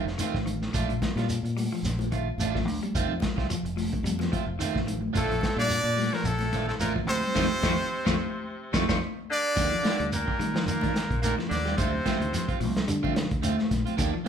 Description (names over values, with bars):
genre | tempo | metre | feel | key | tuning
afrobeat | 109 BPM | 4/4 | swing 56% on 16ths | unclear | A4 = 439 Hz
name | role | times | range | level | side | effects
clean electric guitar | arpeggios | 0.0-14.3 s | D3 to A3 | -34 LUFS | left 4 dB | none
electric guitar at the edge of break-up | stabs | 0.0-14.3 s | Eb3 to G4 | -34 LUFS | right 7 dB | none
fingered electric bass | bass | 0.0-14.1 s | F1 to Eb3 | -31 LUFS | left 1 dB | none
vintage drum kit | drums | 0.1-14.3 s | hi-hat, kick drum, snare drum | -31 LUFS | equal | none
congas | percussion | 0.2-14.1 s | none | -34 LUFS | left 2 dB | none
shekere | percussion | 0.2-14.1 s | none | -36 LUFS | right 2 dB | none
bright trumpet | melody | 5.2-12.6 s | A4 to D5 | -30 LUFS | equal | none
bright alto saxophone | second line | 5.2-12.6 s | A3 to D4 | -38 LUFS | right 5 dB | none
bright baritone saxophone | second line | 5.2-12.6 s | A2 to D3 | -35 LUFS | left 4 dB | none
room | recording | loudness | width
moderate large studio reverb, RT60 0.8 s | band playing live in one room | -25 LUFS | side -8 dB against mid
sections
0.0-9.6 A section; 9.6-14.3 B section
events
band accent 7.4-9.6; drum fill 9.2-9.6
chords
0.0 F7; 0.7 Bbmaj7; 2.9 F7; 5.1 Bbmaj7; 7.4 F7; 9.6 Ebmaj7; 11.8 Dm7